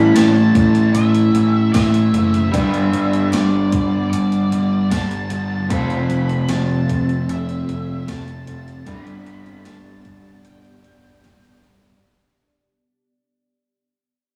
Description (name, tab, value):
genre	rock, shoegaze and dream pop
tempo	76 BPM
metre	4/4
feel	straight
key	unclear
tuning	A4 = 439 Hz
part	octave-fuzz lead guitar	melody	0.0-11.6 s	D5 to B5	-31 LUFS	equal	distortion
part	fuzz guitar	riff	0.0-12.0 s	F2 to A3	-26 LUFS	equal	distortion
part	overdriven semi-hollow guitar	riff	0.0-12.0 s	A2 to B4	-20 LUFS	equal	none
part	growling picked electric bass	bass	0.0-12.0 s	F1 to A1	-25 LUFS	equal	overdrive
part	gated 80s digital drum machine	drums	0.2-11.8 s	hi-hat, kick drum, snare drum	-25 LUFS	equal	gated reverb, gated reverb snare
part	tambourine	percussion	0.2-11.4 s	none	-46 LUFS	equal	none
part	granular cloud pad	sustained chords	6.8-12.0 s	B3 to E5	-35 LUFS	equal	built-in reverb
room	wet stone room reverb, RT60 1.0 s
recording	rough rehearsal-room recording, small room ambience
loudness	-17 LUFS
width	mono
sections	0.0-12.0 A section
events	fade-out 0.0-12.0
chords	0.0 A; 2.5 G; 5.7 Fmaj7; 8.9 G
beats	0.16 0.95 1.75 | 2.54 3.33 4.12 4.92 | 5.71 6.50 7.29 8.08 | 8.87 9.66 10.46 11.25